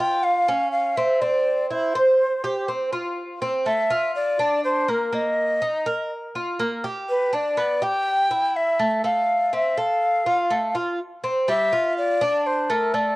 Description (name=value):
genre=latin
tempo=123 BPM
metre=4/4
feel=straight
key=F major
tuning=A4 = 440 Hz
part: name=breathy jazz flute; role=melody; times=0.0-13.2 s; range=Bb4 to G5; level=-21 LUFS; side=left 1 dB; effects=cassette tape
part: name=Cuban tres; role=arpeggios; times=0.0-13.2 s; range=G3 to C5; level=-24 LUFS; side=right 1 dB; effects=cassette tape
room=moderate spring reverb, RT60 1.7 s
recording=home recording on cassette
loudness=-20 LUFS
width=side -19 dB against mid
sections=0.0-11.0 A section; 11.0-13.2 A section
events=none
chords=0.2 Cadd11; 1.2 C; 3.2 F; 4.2 Bb; 5.1 Eb5; 6.1 Bb5; 7.1 G; 8.1 Emadd11; 9.0 F; 11.0 Fsus2; 12.0 Amadd11